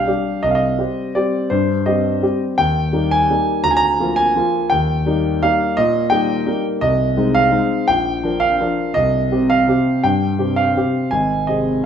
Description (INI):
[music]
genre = classical, piano waltz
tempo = 169 BPM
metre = 3/4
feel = uneven beats, rubato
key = unclear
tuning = A4 = 438 Hz
[part]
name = warm grand piano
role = solo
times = 0.0-11.9 s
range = Ab1 to Bb5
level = -15 LUFS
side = equal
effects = none
[sound]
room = moderate large studio reverb, RT60 1.2 s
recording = heard from further back in the room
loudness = -15 LUFS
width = side -8 dB against mid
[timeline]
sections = 0.0-11.9 A section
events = none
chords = 0.4 Cm; 2.6 Eb; 3.6 Bb/D; 4.7 Eb; 6.8 Ab/C; 7.9 Bb; 8.9 Cm; 11.1 Ab